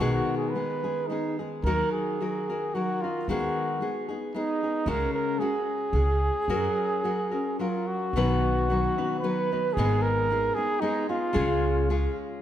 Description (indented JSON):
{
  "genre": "mexican folk, mariachi",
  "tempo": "111 BPM",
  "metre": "3/4",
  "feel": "rubato",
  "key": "F# major, B major from 8.1 s",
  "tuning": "A4 = 441 Hz",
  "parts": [
    { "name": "dark trumpet", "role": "melody", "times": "0.0-12.1 s", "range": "D#4 to B4", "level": "-28 LUFS", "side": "right 1 dB", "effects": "none" },
    { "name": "nylon-string guitar", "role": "accompaniment", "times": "0.0-12.4 s", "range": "G#2 to B4", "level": "-29 LUFS", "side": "left 2 dB", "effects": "none" },
    { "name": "upright bass", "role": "bass", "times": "0.0-12.1 s", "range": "G#1 to F#2", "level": "-28 LUFS", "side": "equal", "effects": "none" }
  ],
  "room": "wet scoring stage reverb, RT60 1.4 s",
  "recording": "none",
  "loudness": "-24 LUFS",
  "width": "side -11 dB against mid",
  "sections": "0.0-8.1 A section; 8.1-12.4 B section",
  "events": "none",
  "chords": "0.0 G#m/B; 1.6 D#m; 3.3 G#m/D#; 4.9 C#sus4; 5.9 C#; 6.5 F#; 8.1 B; 9.8 G#m; 11.4 C#"
}